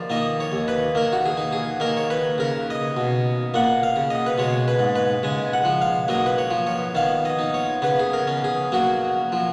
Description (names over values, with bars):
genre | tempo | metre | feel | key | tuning
classical, baroque-style suite movement for harpsichord | 70 BPM (dotted quarters) | 6/8 | rubato | F# major from 3.5 s | A4 = 441 Hz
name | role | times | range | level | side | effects
harpsichord | solo | 0.0-9.5 s | Eb2 to G#5 | -22 LUFS | equal | none
room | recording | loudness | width
wet cathedral reverb, RT60 6.4 s | none | -22 LUFS | mono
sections
0.0-9.5 A section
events
none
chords
0.1 Eb5; 3.5 A#madd11; 4.4 G#m/B; 5.2 C#; 6.1 F#; 7.0 B/D#; 7.8 G#madd11/C#; 8.7 F#